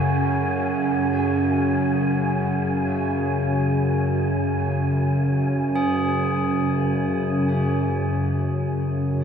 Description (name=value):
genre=dark ambient drone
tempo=free time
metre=none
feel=none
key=unclear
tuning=A4 = 441 Hz
part: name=tubular bells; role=arpeggios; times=0.0-9.2 s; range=C#4 to G#4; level=-32 LUFS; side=equal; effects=diffuse ambient delay
part: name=bowed-like drone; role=drone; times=0.0-9.2 s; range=F#2 to C#3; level=-20 LUFS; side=equal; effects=built-in reverb
part: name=wind-like tuned noise texture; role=texture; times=0.0-7.5 s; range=G#5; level=-30 LUFS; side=right 1 dB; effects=built-in reverb
room=wet huge ambient reverb, RT60 7.5 s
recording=dark, warm production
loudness=-20 LUFS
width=side -7 dB against mid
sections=0.0-7.5 A section; 7.5-9.2 B section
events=none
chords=0.0 F#sus2